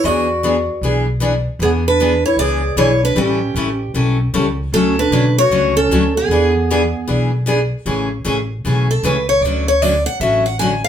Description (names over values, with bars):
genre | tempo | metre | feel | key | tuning
acoustic string swing (jazz manouche) | 153 BPM | 4/4 | swing 64% on 8ths | A major | A4 = 440 Hz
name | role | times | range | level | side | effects
picked steel-string acoustic guitar | melody | 0.0-10.9 s | G4 to G#5 | -17 LUFS | equal | none
mellow clarinet | second line | 0.0-7.4 s | B3 to G#4 | -21 LUFS | right 3 dB | none
picked steel-string acoustic guitar | accompaniment | 0.0-10.7 s | C#3 to A4 | -19 LUFS | left 2 dB | none
upright bass | bass | 0.0-10.8 s | A1 to E2 | -20 LUFS | equal | none
room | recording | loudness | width
wet studio reverb, RT60 0.6 s | band playing live in one room | -14 LUFS | side -9 dB against mid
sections
0.0-7.9 A section; 7.9-10.9 B section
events
steel-string acoustic guitar solo 7.9-10.9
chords
0.0 E9; 1.6 E7; 3.2 A7; 4.7 Dmaj7; 6.3 E7; 7.9 Amaj7; 9.4 Dmaj7